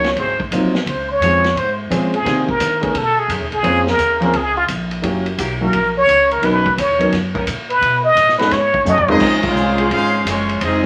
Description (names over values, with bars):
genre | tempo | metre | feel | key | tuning
jazz, big band swing | 172 BPM | 4/4 | swing 65% on 8ths | Bb minor | A4 = 441 Hz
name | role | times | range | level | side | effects
trumpet with plunger mute | melody | 0.0-9.1 s | F4 to D#5 | -18 LUFS | equal | none
warm concert grand piano | accompaniment | 0.0-9.2 s | Eb3 to A#4 | -22 LUFS | equal | none
upright bass | bass | 0.0-10.9 s | F1 to Eb3 | -28 LUFS | equal | none
vintage drum kit | drums | 0.0-10.9 s | crash cymbal, hi-hat, kick drum, ride cymbal, snare drum, toms | -27 LUFS | equal | none
warm saxophone section | sustained chords | 0.2-10.8 s | Db3 to C5 | -29 LUFS | equal | none
clear trombone section | second line | 8.8-10.8 s | F3 to F4 | -20 LUFS | equal | none
warm trumpet section | melody | 8.9-10.8 s | Ab3 to F5 | -22 LUFS | equal | none
room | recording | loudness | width
wet studio reverb, RT60 0.6 s | vinyl crackle | -16 LUFS | mono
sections
0.0-9.2 A section; 9.2-10.9 B section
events
muted trumpet solo 0.0-9.2; drum fill 8.9-9.2; band accent 9.4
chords
0.2 Ab9; 0.9 Dbmaj7; 2.3 Cm9; 3.0 B13; 3.6 Bbm9; 5.0 Gb7b9; 6.4 Bmaj9; 7.8 B13; 9.2 Bbm9